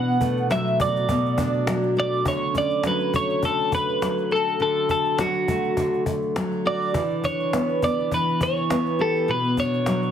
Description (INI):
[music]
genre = acoustic pop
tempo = 102 BPM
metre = 4/4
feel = swing 55% on 16ths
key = D major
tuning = A4 = 440 Hz
[part]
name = twelve-string electric guitar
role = melody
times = 0.0-10.1 s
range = F#4 to F#5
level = -23 LUFS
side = equal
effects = none
[part]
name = fingerpicked steel-string acoustic guitar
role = accompaniment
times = 0.0-10.1 s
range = B2 to G4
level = -24 LUFS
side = equal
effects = none
[part]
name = cajon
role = drums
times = 0.1-10.1 s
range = none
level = -30 LUFS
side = left 2 dB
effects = none
[sound]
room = moderate studio reverb, RT60 0.7 s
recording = heavily compressed radio sound, multiband compression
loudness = -20 LUFS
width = side -9 dB against mid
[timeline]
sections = 0.0-2.3 A section; 2.3-10.1 B section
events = none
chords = 0.0 Bm7; 2.3 Dmaj7; 6.9 Em7; 9.3 Bm